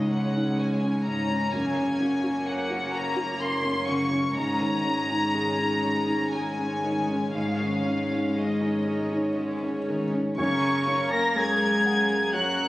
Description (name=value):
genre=cinematic, emotional film score for orchestra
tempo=59-64 BPM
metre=3/4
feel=rubato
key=Gb major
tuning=A4 = 440 Hz
part: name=warm studio violin section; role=melody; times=0.0-12.7 s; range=Eb5 to Bb6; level=-29 LUFS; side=left 2 dB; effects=none
part: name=dark studio violin section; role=second line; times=0.0-12.7 s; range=Ab3 to Db5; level=-36 LUFS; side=equal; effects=none
part: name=dark concert grand piano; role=accompaniment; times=0.0-12.7 s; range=Db2 to Gb5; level=-29 LUFS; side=equal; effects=none
part: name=rich studio viola section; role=accompaniment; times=0.0-12.7 s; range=Ab3 to Bb4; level=-32 LUFS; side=right 1 dB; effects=none
part: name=dark studio double bass section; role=bass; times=0.0-12.7 s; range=Gb1 to Gb2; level=-37 LUFS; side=right 1 dB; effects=none
part: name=warm studio cello section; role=bass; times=0.0-12.7 s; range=Db2 to Bb3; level=-31 LUFS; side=left 1 dB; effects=none
part: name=clear oboe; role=second line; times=10.4-12.7 s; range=Db5 to Bb5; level=-27 LUFS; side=right 1 dB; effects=none
part: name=hollow small flute group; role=second line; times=10.4-12.7 s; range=Bb5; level=-35 LUFS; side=left 2 dB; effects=none
part: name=mellow clarinet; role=second line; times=10.4-12.7 s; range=Bb3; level=-37 LUFS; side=equal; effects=none
part: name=mellow French horn section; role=sustained chords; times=10.4-12.7 s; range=Db4 to Bb4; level=-32 LUFS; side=equal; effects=none
room=moderate concert hall reverb, RT60 2.2 s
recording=recorded on a phone in the room, studio reverb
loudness=-23 LUFS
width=side -16 dB against mid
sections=0.0-10.4 A section; 10.4-12.7 B section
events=none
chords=0.0 Dbsus2; 1.5 Gb; 4.4 Absus4; 10.4 Gb